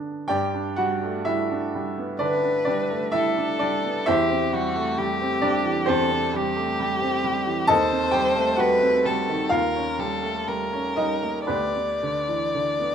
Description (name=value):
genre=classical, romantic duo for violin and grand piano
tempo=64 BPM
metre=4/4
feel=uneven beats, rubato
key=G major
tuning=A4 = 441 Hz
part: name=bright baby grand piano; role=accompaniment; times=0.0-12.9 s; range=D2 to A5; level=-23 LUFS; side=right 1 dB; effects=none
part: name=rich violin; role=melody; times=2.2-12.9 s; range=F#4 to D5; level=-24 LUFS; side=left 2 dB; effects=none
room=moderate recital hall reverb, RT60 1.5 s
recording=none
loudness=-21 LUFS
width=side -8 dB against mid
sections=0.3-12.9 A section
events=none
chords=0.3 G; 4.1 C/E; 7.7 Cm/Eb; 9.5 Eb7; 11.5 G/D